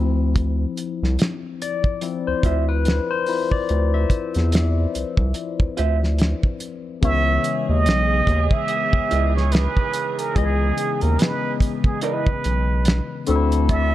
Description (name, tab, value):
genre	R&B, neo-soul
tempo	72 BPM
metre	4/4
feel	swing 57% on 16ths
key	unclear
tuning	A4 = 436 Hz
part	barky tine electric piano	accompaniment	0.0-13.9 s	C#3 to E5	-25 LUFS	left 7 dB	overdrive, phaser
part	round analog bass	bass	0.0-13.9 s	B1 to E2	-20 LUFS	equal	none
part	cloth-damped thuddy drum kit	drums	0.4-13.9 s	hi-hat, kick drum, snare drum	-21 LUFS	equal	none
part	electric guitar through a small old amp	second line	2.4-12.3 s	E4 to E5	-27 LUFS	right 6 dB	none
part	trumpet with plunger mute	melody	7.0-13.9 s	G#4 to E5	-24 LUFS	right 4 dB	none
part	clear saxophone section	stabs	7.0-13.9 s	D3 to A4	-32 LUFS	right 13 dB	none
part	percussive tonewheel organ	sustained chords	13.7-13.9 s	D3 to A4	-32 LUFS	right 2 dB	slow rotary speaker, overdrive, chorus vibrato
room	small room ambience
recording	dark, warm production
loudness	-18 LUFS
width	side -14 dB against mid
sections	0.0-7.0 A section; 7.0-13.9 B section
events	tine electric piano solo 0.0-7.0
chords	0.0 Dm9; 7.0 C#m9; 13.3 D7sus2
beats	| 0.36 1.19 2.02 2.86 | 3.69 4.52 5.36 6.19 | 7.02 7.86 8.69 9.52 | 10.36 11.19 12.02 12.86 | 13.69